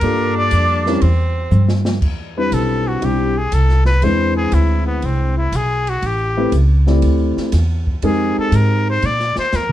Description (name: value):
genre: jazz, small-group swing and bop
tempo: 120 BPM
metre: 4/4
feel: swing 69% on 8ths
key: C major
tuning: A4 = 441 Hz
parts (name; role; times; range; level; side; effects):
- trumpet with straight mute; melody; 0.0-9.7 s; B3 to D5; -20 LUFS; left 2 dB; none
- bright tenor saxophone; second line; 0.0-1.9 s; C4 to D4; -23 LUFS; right 4 dB; none
- warm concert grand piano; accompaniment; 0.0-9.0 s; G3 to D5; -19 LUFS; left 1 dB; none
- upright bass; bass; 0.0-9.7 s; A1 to Bb2; -16 LUFS; equal; none
- open jazz drum kit; drums; 0.0-9.7 s; crash cymbal, hi-hat, kick drum, ride cymbal, snare drum, toms; -27 LUFS; equal; none
room: light reverb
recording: dark, warm production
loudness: -14 LUFS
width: side -13 dB against mid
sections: 0.0-2.0 A section; 2.0-9.7 B section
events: drum fill 1.5-2.0, 9.5; muted trumpet solo 2.0-9.7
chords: 0.0 Gm9; 1.0 C; 2.0 Cmaj7; 4.0 E7b13; 6.0 Am7; 8.0 Fm11; 9.0 Bb5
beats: | 0.02 0.52 1.02 1.52 | 2.02 2.52 3.02 3.52 | 4.02 4.52 5.02 5.52 | 6.02 6.52 7.02 7.53 | 8.03 8.53 9.03 9.53